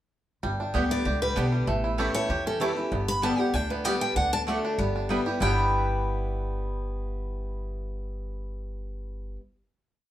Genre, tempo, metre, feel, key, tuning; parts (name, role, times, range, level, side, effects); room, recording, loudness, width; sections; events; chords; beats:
bluegrass; 193 BPM; 4/4; straight; G lydian; A4 = 440 Hz
picked steel-string acoustic guitar; accompaniment; 0.4-9.4 s; E2 to G4; -31 LUFS; left 1 dB
bluegrass banjo; arpeggios; 0.4-9.4 s; E3 to G4; -32 LUFS; right 2 dB
upright bass; bass; 0.4-9.4 s; G1 to E2; -30 LUFS; equal
mandolin; stabs; 0.7-9.4 s; A3 to A5; -32 LUFS; right 2 dB
picked steel-string acoustic guitar; melody; 0.9-9.4 s; G4 to B5; -30 LUFS; equal
moderate studio ambience, RT60 0.5 s; band playing live in one room; -25 LUFS; side -12 dB against mid
0.4-5.4 A section; 5.4-7.9 final chord
0.4 G; 1.7 A; 2.9 G; 4.2 D; 4.8 G6
| 0.43 0.74 1.05 1.36 | 1.68 1.99 2.30 2.61 | 2.92 3.23 3.54 3.85 | 4.16 4.47 4.78 5.09 | 5.41 5.72 6.03 6.34 | 6.65 6.96 7.27 7.58